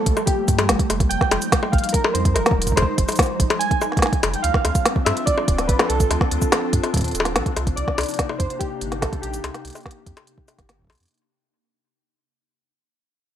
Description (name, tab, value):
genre	IDM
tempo	144 BPM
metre	4/4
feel	straight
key	unclear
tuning	A4 = 439 Hz
part	warbly lo-fi synth keys	melody	0.0-10.9 s	G4 to Ab5	-26 LUFS	right 2 dB	chorus, tape echo
part	glassy FM pad	sustained chords	0.0-11.1 s	C3 to F4	-28 LUFS	left 1 dB	ensemble chorus, built-in reverb
part	warm sub bass	bass	0.1-11.1 s	D1 to G2	-25 LUFS	equal	none
part	electronic kick drum	drums	0.1-10.9 s	none	-21 LUFS	right 1 dB	studio reverb
part	organic electronic drum kit	drums	0.1-11.2 s	bongos, hi-hat, shaker, snare drum	-22 LUFS	left 1 dB	studio reverb
room	little or no reverb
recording	rough home demo mix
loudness	-18 LUFS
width	side -10 dB against mid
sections	0.0-11.1 A section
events	fade-out 6.7-11.1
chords	0.0 Gm9; 1.1 Fm9; 4.4 Dm7; 7.6 Cm9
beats	0.27 0.69 | 1.11 1.52 1.94 2.36 | 2.77 3.19 3.61 4.02 | 4.44 4.86 5.27 5.69 | 6.11 6.52 6.94 7.36 | 7.77 8.19 8.61 9.02 | 9.44 9.86 10.27 10.69